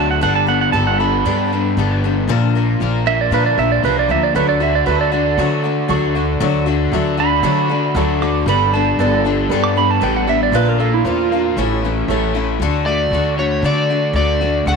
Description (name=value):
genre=rock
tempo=116 BPM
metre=4/4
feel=straight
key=D major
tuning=A4 = 439 Hz
part: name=pedal steel guitar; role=second line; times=0.0-11.6 s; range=E4 to D6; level=-18 LUFS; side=right 11 dB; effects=none
part: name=picked steel-string acoustic guitar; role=accompaniment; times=0.0-14.8 s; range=A2 to Bb4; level=-20 LUFS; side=left 11 dB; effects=none
part: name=crunchy overdriven guitar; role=riff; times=0.0-14.8 s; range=A2 to Bb4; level=-23 LUFS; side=left 1 dB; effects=none
part: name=upright bass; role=bass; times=0.0-14.8 s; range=G1 to D3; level=-20 LUFS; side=equal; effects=none
part: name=dark upright piano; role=accompaniment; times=4.3-12.4 s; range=E4 to C#6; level=-26 LUFS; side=right 11 dB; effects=none
part: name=overdriven slide guitar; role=melody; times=12.9-14.8 s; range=C#5 to F#5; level=-18 LUFS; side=equal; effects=none
room=moderate echo chamber reverb, RT60 1.8 s, small room ambience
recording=1960s-style stereo with parts hard left and right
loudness=-14 LUFS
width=side -4 dB against mid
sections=0.0-12.6 A section; 12.6-14.8 B section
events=pedal steel guitar solo 0.0-12.6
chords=0.2 Gadd9; 2.3 Bb; 4.3 D; 8.5 Gadd9; 10.5 Bb; 11.6 A; 12.6 D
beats=| 0.23 0.74 1.26 1.77 | 2.29 2.80 3.32 3.83 | 4.35 4.86 5.38 5.89 | 6.41 6.92 7.44 7.95 | 8.47 8.98 9.50 10.02 | 10.53 11.05 11.57 12.08 | 12.60 13.12 13.63 14.15 | 14.67